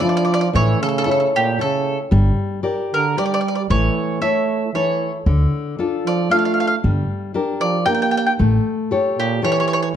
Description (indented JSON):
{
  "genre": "italian folk, Italian serenade",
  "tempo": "115 BPM",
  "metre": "3/4",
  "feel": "straight",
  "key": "unclear",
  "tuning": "A4 = 439 Hz",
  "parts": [
    { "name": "bowl-back mandolin", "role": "melody", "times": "0.0-9.9 s", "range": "G4 to G5", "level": "-21 LUFS", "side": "right 1 dB", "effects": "none" },
    { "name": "bright trombone", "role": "second line", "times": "0.0-9.9 s", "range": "Bb2 to Bb3", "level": "-22 LUFS", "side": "right 6 dB", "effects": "none" },
    { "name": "nylon-string guitar", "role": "accompaniment", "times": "0.0-9.8 s", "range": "D3 to D5", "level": "-21 LUFS", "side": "left 4 dB", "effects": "none" },
    { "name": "upright bass", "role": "bass", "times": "0.5-8.6 s", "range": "G1 to D2", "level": "-16 LUFS", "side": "equal", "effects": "none" }
  ],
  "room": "moderate recital hall reverb, RT60 1.4 s",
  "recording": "dark, warm production",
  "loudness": "-16 LUFS",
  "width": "side -9 dB against mid",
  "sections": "0.0-10.0 A section",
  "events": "none",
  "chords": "0.0 Dmadd9; 0.5 A; 2.1 Gm; 3.7 A; 5.3 Dm; 6.8 Gm; 8.4 A7"
}